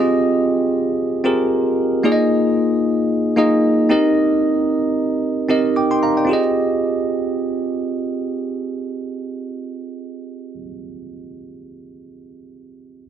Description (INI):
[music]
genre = amapiano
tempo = 113 BPM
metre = 4/4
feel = swing 55% on 16ths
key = F minor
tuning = A4 = 440 Hz
[part]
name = bell-like tine electric piano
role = accompaniment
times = 0.0-13.1 s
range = Bb3 to D6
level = -17 LUFS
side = right 1 dB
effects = lush chorus
[sound]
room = moderate plate reverb, RT60 2.3 s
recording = dense, heavily limited modern master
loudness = -16 LUFS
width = side -9 dB against mid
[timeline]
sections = 0.0-6.3 A section; 6.3-10.5 B section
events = none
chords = 0.0 Fm9; 2.0 Bb7sus4; 3.9 Cm7; 6.3 Fm9